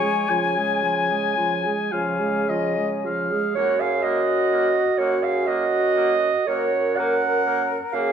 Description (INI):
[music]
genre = classical, slow romantic movement for wind quintet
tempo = 35-43 BPM (dotted quarters)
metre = 12/8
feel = rubato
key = F# major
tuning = A4 = 440 Hz
[part]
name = concert flute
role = melody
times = 0.0-8.1 s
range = F#4 to G#5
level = -27 LUFS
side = left 8 dB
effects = none
[part]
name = warm oboe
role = second line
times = 0.0-8.1 s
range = A#3 to G#5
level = -28 LUFS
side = left 4 dB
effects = none
[part]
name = mellow French horn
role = accompaniment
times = 0.0-8.1 s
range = E#3 to A#4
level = -27 LUFS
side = equal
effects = none
[part]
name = warm clarinet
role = accompaniment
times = 0.0-8.1 s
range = E#4 to F#5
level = -24 LUFS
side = right 7 dB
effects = none
[part]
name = mellow bassoon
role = bass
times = 0.0-8.1 s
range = F#2 to C#3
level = -27 LUFS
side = right 2 dB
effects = none
[sound]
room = moderate recital hall reverb, RT60 1.3 s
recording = dark, warm production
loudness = -19 LUFS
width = side -8 dB against mid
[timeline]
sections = 0.0-3.6 A section; 3.6-8.1 B section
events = none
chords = 0.0 C#; 3.6 F#